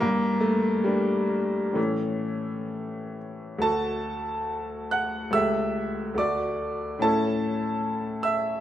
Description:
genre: classical, romantic character piece for solo piano.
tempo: 62-75 BPM.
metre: 2/4.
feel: rubato.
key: D major.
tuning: A4 = 440 Hz.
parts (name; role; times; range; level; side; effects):
bright baby grand piano; solo; 0.0-8.6 s; C#2 to F#6; -24 LUFS; equal; none.
room: light reverb.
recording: close, detailed microphones, lossy compression artefacts.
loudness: -24 LUFS.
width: side -12 dB against mid.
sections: 0.0-3.6 A section; 3.6-8.6 B section.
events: none.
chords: 0.0 Gm; 1.8 A; 3.6 D; 5.3 A7/C#; 6.2 D; 7.0 A.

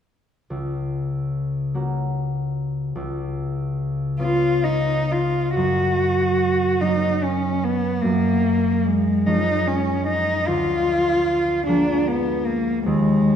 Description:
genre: classical, romantic duo for cello and harp.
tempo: 41-52 BPM (dotted quarters).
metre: 6/8.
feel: rubato.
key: F# major.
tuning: A4 = 437 Hz.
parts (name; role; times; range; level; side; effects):
concert harp; accompaniment; 0.5-13.4 s; C#2 to F#4; -23 LUFS; right 1 dB; none.
dark cello; melody; 4.2-13.4 s; G#3 to F#4; -20 LUFS; left 1 dB; none.
room: wet concert hall reverb, RT60 2.3 s.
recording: minimal, uncompressed stereo recording.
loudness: -19 LUFS.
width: side -8 dB against mid.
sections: 0.5-5.6 A section; 5.6-13.4 B section.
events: none.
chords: 0.5 F#/C#; 2.9 C#7; 5.6 F#; 8.0 C#/F#; 10.5 A#7/D.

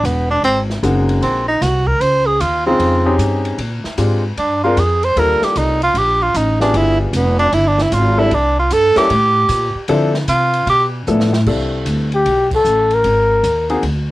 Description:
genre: jazz, small-group swing and bop.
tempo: 152 BPM.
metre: 4/4.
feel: swing 66% on 8ths.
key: unclear.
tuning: A4 = 439 Hz.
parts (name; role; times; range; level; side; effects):
clear tenor saxophone; second line; 0.0-10.8 s; G3 to C5; -15 LUFS; right 2 dB; cassette tape.
upright bass; bass; 0.0-14.1 s; E1 to D3; -18 LUFS; equal; none.
open jazz drum kit; drums; 0.0-13.9 s; crash cymbal, hi-hat, kick drum, ride cymbal, snare drum; -27 LUFS; left 1 dB; cassette tape.
clear grand piano; accompaniment; 0.8-13.8 s; Db3 to Bb4; -18 LUFS; left 2 dB; cassette tape.
mellow flugelhorn; melody; 12.1-13.7 s; G4 to Bb4; -13 LUFS; left 2 dB; cassette tape.
room: light reverb.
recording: home recording on cassette.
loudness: -13 LUFS.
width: side -17 dB against mid.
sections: 0.0-11.5 A section; 11.5-14.1 B section.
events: tenor saxophone solo 0.0-11.5; drum fill 11.1-11.5; band accent 12.4.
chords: 0.4 Ab9; 2.0 Dbmaj9; 3.6 Bb13; 5.2 Ebmaj9#11; 6.7 G7b9; 8.3 C6; 9.1 Gmadd9/A; 9.9 Dm7; 10.7 G13 (rootless); 11.5 C69; 13.0 Absus2.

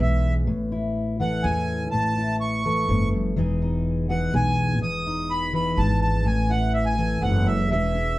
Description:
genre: acoustic folk duo or small band.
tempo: 125 BPM.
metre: 3/4.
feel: straight.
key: unclear.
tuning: A4 = 440 Hz.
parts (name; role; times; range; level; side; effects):
accordion; melody; 0.0-8.2 s; E5 to D#6; -26 LUFS; right 1 dB; none.
fingerpicked steel-string acoustic guitar; accompaniment; 0.0-8.2 s; E2 to A4; -25 LUFS; left 2 dB; none.
upright bass; bass; 0.0-8.2 s; E1 to E2; -25 LUFS; equal; none.
room: moderate studio reverb, RT60 0.5 s.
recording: heard from further back in the room, nothing above 10.6 kHz.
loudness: -21 LUFS.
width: side -17 dB against mid.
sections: 0.0-8.2 A section.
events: none.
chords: 0.5 A; 3.4 Emaj7; 6.3 A5.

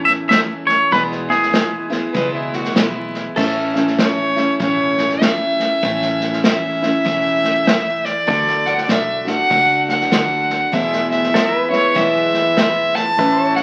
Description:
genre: honky-tonk and classic country.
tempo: 98 BPM.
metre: 4/4.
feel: swing 61% on 8ths.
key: A major.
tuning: A4 = 444 Hz.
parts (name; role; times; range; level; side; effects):
twangy electric guitar; melody; 0.0-2.5 s; G#4 to E5; -19 LUFS; equal; none.
picked steel-string acoustic guitar; accompaniment; 0.0-13.6 s; E2 to F#4; -24 LUFS; equal; none.
vintage muted fingered electric bass; bass; 0.0-13.6 s; E1 to E2; -36 LUFS; equal; none.
unplugged drum kit; drums; 0.1-13.6 s; crash cymbal, hi-hat, kick drum, snare drum; -23 LUFS; equal; none.
clear fiddle; second line; 2.1-13.6 s; E4 to A5; -20 LUFS; equal; none.
pedal steel guitar; sustained chords; 3.4-13.6 s; A4 to E5; -25 LUFS; equal; none.
room: wet club reverb, RT60 0.6 s.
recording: very old 78 rpm record, vinyl crackle.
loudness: -17 LUFS.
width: mono.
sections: 0.0-3.4 A section; 3.4-13.6 A section.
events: fiddle solo 3.4-13.6.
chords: 0.0 A; 0.9 E; 3.4 A; 8.3 D; 10.7 E.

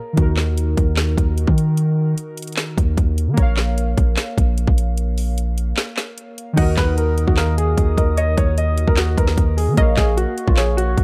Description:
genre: hip hop, trap.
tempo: 150 BPM.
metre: 4/4.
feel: half-time.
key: Eb minor.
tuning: A4 = 440 Hz.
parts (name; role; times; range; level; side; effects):
warm baby grand piano; melody; 0.0-0.2, 6.6-11.0 s; F4 to Eb5; -26 LUFS; equal; none.
warbly lo-fi synth keys; accompaniment; 0.0-11.0 s; Eb3 to F5; -28 LUFS; equal; chorus.
long sustained 808-style bass; bass; 0.2-11.0 s; Bb1 to Eb3; -21 LUFS; equal; none.
trap drum kit; drums; 0.2-11.0 s; crash cymbal, handclaps, hi-hat, kick drum, snare drum; -21 LUFS; equal; none.
soft round pluck; second line; 6.6-11.0 s; Cb5 to Gb5; -31 LUFS; equal; chorus, digital delay.
mellow large flute ensemble; sustained chords; 6.6-11.0 s; Gb4 to Eb6; -34 LUFS; equal; none.
room: little or no reverb.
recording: dark, warm production.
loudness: -18 LUFS.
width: mono.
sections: 0.0-6.6 A section; 6.6-11.0 B section.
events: break 0.0, 5.8-6.6.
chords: 0.2 Ebm; 3.4 Bbm; 6.6 Ebm; 9.8 Bbm.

